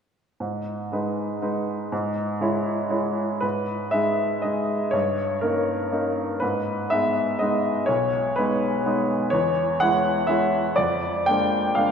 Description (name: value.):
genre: classical, romantic character piece for solo piano.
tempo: 122 BPM.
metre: 3/4.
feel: rubato.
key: G# minor.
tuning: A4 = 441 Hz.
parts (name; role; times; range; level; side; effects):
clear upright piano; solo; 0.4-11.9 s; B1 to G5; -21 LUFS; equal; none.
room: wet church reverb, RT60 3.0 s.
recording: recorded in a church or concert hall.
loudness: -21 LUFS.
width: side -6 dB against mid.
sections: 0.4-3.4 A section; 3.4-11.9 B section.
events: none.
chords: 0.4 G#m; 1.9 C#m/G#; 3.4 G#m; 4.9 D#7/G; 6.4 G#m; 7.9 G#m/B; 9.3 C#m/E; 10.8 A#7/E#.